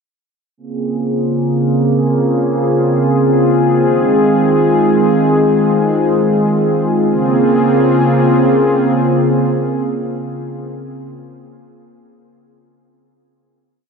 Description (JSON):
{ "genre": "hip hop", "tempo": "free time", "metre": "none", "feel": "none", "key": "Bb minor", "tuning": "A4 = 442 Hz", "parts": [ { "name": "warm analog pad", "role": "solo", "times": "0.6-11.1 s", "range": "Db3 to Ab4", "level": "-12 LUFS", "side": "equal", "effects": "chorus, low-pass filter" } ], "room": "light reverb", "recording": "none", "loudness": "-11 LUFS", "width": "side -5 dB against mid", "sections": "0.6-7.1 breakdown; 7.1-10.4 final chord", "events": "filter sweep on analog synth pad 0.6-7.1", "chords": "0.6 Bbm9; 3.8 Fm7; 7.1 Bbm9" }